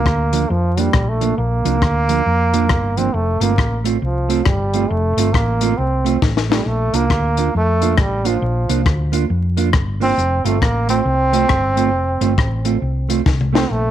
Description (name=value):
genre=ska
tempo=136 BPM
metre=4/4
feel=swing 61% on 8ths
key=F major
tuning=A4 = 441 Hz
part: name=clear trombone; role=melody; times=0.0-13.9 s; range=F3 to C4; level=-20 LUFS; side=right 2 dB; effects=none
part: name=hollow-body short-scale fingered electric bass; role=bass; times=0.0-13.9 s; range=F1 to F2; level=-19 LUFS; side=equal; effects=none
part: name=compact cocktail drum kit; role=drums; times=0.1-13.7 s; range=hi-hat, kick drum, rim click, snare drum, toms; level=-19 LUFS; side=left 2 dB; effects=none
part: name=mellow electric guitar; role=accompaniment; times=0.3-13.6 s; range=F3 to F4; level=-22 LUFS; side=right 9 dB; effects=none
room=light reverb, small room reverb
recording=1960s-style stereo, vinyl crackle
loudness=-15 LUFS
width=side -11 dB against mid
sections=0.0-13.9 A section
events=drum fill 6.2-6.7, 13.3-13.7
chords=0.0 Bb; 3.1 F; 6.7 Bb; 10.2 F